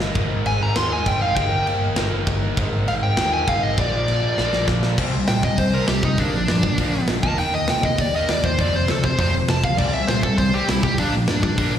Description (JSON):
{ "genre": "punk rock", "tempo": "200 BPM", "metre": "4/4", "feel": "straight", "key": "unclear", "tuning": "A4 = 440 Hz", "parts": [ { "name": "distorted electric guitar", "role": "riff", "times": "0.0-11.8 s", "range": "F2 to Eb4", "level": "-24 LUFS", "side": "equal", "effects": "distortion, slapback echo" }, { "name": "overdriven picked electric bass", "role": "bass", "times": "0.0-11.8 s", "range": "F1 to C3", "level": "-24 LUFS", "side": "equal", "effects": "none" }, { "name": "tight metal drum kit", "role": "drums", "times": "0.0-11.7 s", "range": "crash cymbal, hi-hat, kick drum, snare drum", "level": "-24 LUFS", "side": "equal", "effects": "none" }, { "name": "dark smooth lead guitar", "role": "melody", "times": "0.5-11.7 s", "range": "D4 to C6", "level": "-22 LUFS", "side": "left 1 dB", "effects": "overdrive, slapback echo, ping-pong delay" } ], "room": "light reverb", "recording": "live gig heard through the venue's PA, recital hall reverb", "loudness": "-18 LUFS", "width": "side -9 dB against mid", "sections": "0.0-5.0 A section; 5.0-11.8 B section", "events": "drum fill 0.0, 4.4-5.0; half time 0.0-5.0; lead electric guitar solo 5.0-11.8", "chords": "0.2 Ab5; 1.4 Eb/G; 2.6 Ab5; 3.8 Bb; 5.0 C5; 6.2 Bb; 7.2 Eb5; 8.6 F5; 9.8 C5; 11.0 Bb", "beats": "| 0.17 0.47 0.77 1.07 | 1.37 1.67 1.97 2.27 | 2.58 2.88 3.18 3.48 | 3.78 4.08 4.38 4.68 | 4.98 5.29 5.58 5.89 | 6.19 6.49 6.79 7.09 | 7.39 7.69 7.99 8.29 | 8.59 8.89 9.19 9.49 | 9.79 10.09 10.39 10.69 | 10.99 11.29 11.59" }